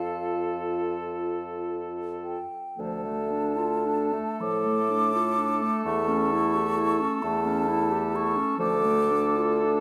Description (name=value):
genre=classical, slow romantic movement for wind quintet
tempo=32-45 BPM (dotted quarters)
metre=6/8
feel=rubato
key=D minor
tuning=A4 = 440 Hz
part: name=mellow hollow concert flute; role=melody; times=0.0-9.8 s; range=F5 to D6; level=-31 LUFS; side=equal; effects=none
part: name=mellow oboe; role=second line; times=0.0-9.8 s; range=A4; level=-35 LUFS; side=equal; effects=none
part: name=mellow French horn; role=accompaniment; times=0.0-9.8 s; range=A3 to F4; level=-35 LUFS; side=equal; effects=none
part: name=mellow clarinet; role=accompaniment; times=0.0-9.8 s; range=F3 to G4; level=-34 LUFS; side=equal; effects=none
part: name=mellow bassoon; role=bass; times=0.0-9.8 s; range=D2 to A2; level=-32 LUFS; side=equal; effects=none
room=wet recital hall reverb, RT60 1.3 s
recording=none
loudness=-26 LUFS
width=mono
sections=0.0-2.8 A section; 2.8-9.8 B section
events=none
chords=0.0 F; 2.8 Dm; 5.9 A7/E; 8.6 Dm